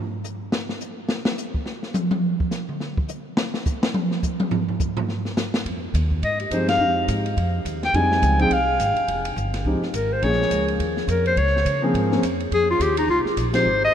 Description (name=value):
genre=jazz, small-group swing and bop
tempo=210 BPM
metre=4/4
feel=swing 59% on 8ths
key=F minor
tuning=A4 = 439 Hz
part: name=open jazz drum kit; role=drums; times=0.2-13.6 s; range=hi-hat, kick drum, ride cymbal, snare drum, toms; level=-26 LUFS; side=equal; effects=none
part: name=upright bass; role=bass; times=5.7-13.9 s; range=F1 to Db3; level=-24 LUFS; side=equal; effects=none
part: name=clear clarinet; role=melody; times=6.2-13.9 s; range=Eb4 to Ab5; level=-21 LUFS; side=left 1 dB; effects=none
part: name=warm concert grand piano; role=accompaniment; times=6.5-13.6 s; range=F3 to Ab4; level=-25 LUFS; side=equal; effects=none
room=wet cathedral reverb, RT60 5.6 s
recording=in a vast, echoing space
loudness=-20 LUFS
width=side -9 dB against mid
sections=0.0-5.7 A section; 5.7-13.9 B section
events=drum solo 0.0-5.7; band accent 6.7, 13.5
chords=0.0 N.C.; 5.7 Fm9; 10.2 Bbm9; 12.5 Fm7